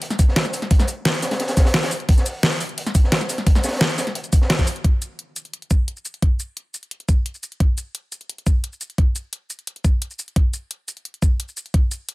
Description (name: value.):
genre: drum and bass.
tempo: 174 BPM.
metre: 4/4.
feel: straight.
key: none.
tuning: none.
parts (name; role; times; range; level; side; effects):
crunchy breakbeat drum kit; drums; 0.0-4.8 s; hi-hat, snare drum; -26 LUFS; equal; high-pass filter on hats, high-pass filter on snare, high-pass filter on room.
pop drum kit; drums; 0.0-12.1 s; hi-hat, shaker, snare drum; -22 LUFS; equal; overdrive.
electronic kick drum; drums; 0.2-11.8 s; none; -16 LUFS; equal; overdrive.
room: little or no reverb.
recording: none.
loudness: -18 LUFS.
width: side -20 dB against mid.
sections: 0.0-4.8 A section; 4.8-12.1 B section.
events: drop 0.0-4.8.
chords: none.